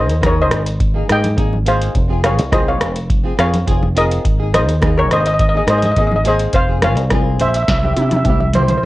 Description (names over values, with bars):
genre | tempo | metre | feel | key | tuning
calypso | 105 BPM | 4/4 | straight | F minor | A4 = 440 Hz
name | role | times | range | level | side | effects
steel pan | melody | 0.0-8.8 s | Bb4 to G5 | -17 LUFS | equal | none
flamenco guitar | accompaniment | 0.0-8.8 s | Bb3 to Ab4 | -23 LUFS | left 1 dB | double-tracked left and right
fingered electric bass | bass | 0.0-8.8 s | F1 to C3 | -18 LUFS | equal | none
electro analog drum machine | drums | 0.1-8.8 s | hi-hat, kick drum, rim click, snare drum, toms | -18 LUFS | equal | none
congas | percussion | 0.2-8.7 s | none | -26 LUFS | left 1 dB | none
room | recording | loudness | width
light reverb | worn, warbling old tape, cassette tape, warbly pitch drift | -13 LUFS | side -17 dB against mid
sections
0.0-8.8 A section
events
drum fill 7.7-8.8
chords
0.0 Absus2; 2.0 Fm; 4.2 Absus2; 6.5 Fm; 7.7 C